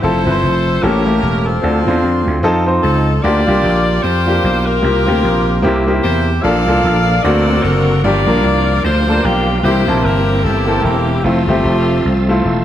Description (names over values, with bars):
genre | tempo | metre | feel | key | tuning
gospel | 150 BPM | 4/4 | swing 59% on 8ths | F major | A4 = 440 Hz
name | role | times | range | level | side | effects
edgy saxophone section | melody | 0.0-12.4 s | A3 to F5 | -18 LUFS | left 2 dB | none
clear baby grand piano | accompaniment | 0.0-12.6 s | G2 to A5 | -16 LUFS | equal | none
vintage slap bass | bass | 0.0-12.6 s | E1 to F2 | -16 LUFS | equal | none
bright tonewheel organ | sustained chords | 6.4-12.6 s | D3 to E5 | -22 LUFS | right 2 dB | slow rotary speaker, chorus vibrato
room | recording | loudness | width
moderate scoring stage reverb, RT60 1.8 s | none | -12 LUFS | side -11 dB against mid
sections
0.0-12.6 A section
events
none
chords
0.0 Fmaj7; 0.8 A7b9; 1.6 Dm7; 2.4 F7; 3.2 Bb6; 4.8 C7sus4; 5.6 C7; 6.4 Bbmaj7; 7.2 D7b13; 8.0 Gm7; 9.6 C7; 11.2 Fmaj7